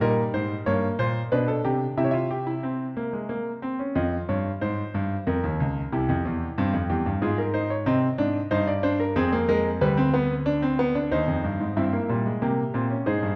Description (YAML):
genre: classical, baroque-style 4-part fugue for grand piano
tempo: 92 BPM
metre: 3/4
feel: straight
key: unclear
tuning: A4 = 439 Hz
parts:
  - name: clear concert grand piano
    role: solo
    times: 0.0-13.4 s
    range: C2 to E5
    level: -25 LUFS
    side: equal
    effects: none
room: wet recital hall reverb, RT60 1.8 s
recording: none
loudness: -25 LUFS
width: mono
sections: 0.0-4.0 A section; 4.0-11.8 B section; 11.8-13.4 A section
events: none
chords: 0.0 Gdim; 1.3 G/B; 2.0 C; 4.0 Fm; 5.3 Db69; 5.9 C; 7.2 Fm/Ab; 7.9 Cm; 9.2 Fmadd11; 9.8 G/D (rootless); 11.1 Cm/Eb; 11.8 C7/G